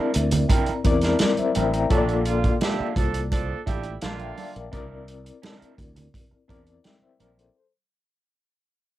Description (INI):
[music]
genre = lush 1970s-style soul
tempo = 85 BPM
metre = 4/4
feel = straight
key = unclear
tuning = A4 = 440 Hz
[part]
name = reed electric piano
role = accompaniment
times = 0.0-7.7 s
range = Bb3 to Bb5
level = -26 LUFS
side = left 5 dB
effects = fast tremolo, cassette tape
[part]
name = electric guitar through a small old amp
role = riff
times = 0.0-7.4 s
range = D4 to Bb4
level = -33 LUFS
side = right 7 dB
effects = cassette tape
[part]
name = warm soul drum kit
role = drums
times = 0.1-7.5 s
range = hi-hat, kick drum, snare drum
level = -24 LUFS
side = equal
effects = cassette tape
[part]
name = vibraphone with soft mallets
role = texture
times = 0.1-1.7 s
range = E5 to Bb5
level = -36 LUFS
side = right 6 dB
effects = stereo widening, cassette tape
[part]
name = modern bright fingered electric bass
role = bass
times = 0.2-7.5 s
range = A1 to E2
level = -27 LUFS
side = equal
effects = none
[part]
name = congas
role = percussion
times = 0.3-7.4 s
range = none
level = -30 LUFS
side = right 6 dB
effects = none
[part]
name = warm horn section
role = stabs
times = 1.9-4.5 s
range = Bb2 to E5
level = -31 LUFS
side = right 7 dB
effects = cassette tape
[sound]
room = light reverb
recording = home recording on cassette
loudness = -20 LUFS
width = side -14 dB against mid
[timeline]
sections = 0.0-7.5 A section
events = fade-out 0.0-7.5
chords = 0.0 C9; 1.9 Bbmaj7; 4.7 C9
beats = 0.49 1.20 | 1.91 2.61 3.31 4.02 | 4.72 5.43 6.14 6.84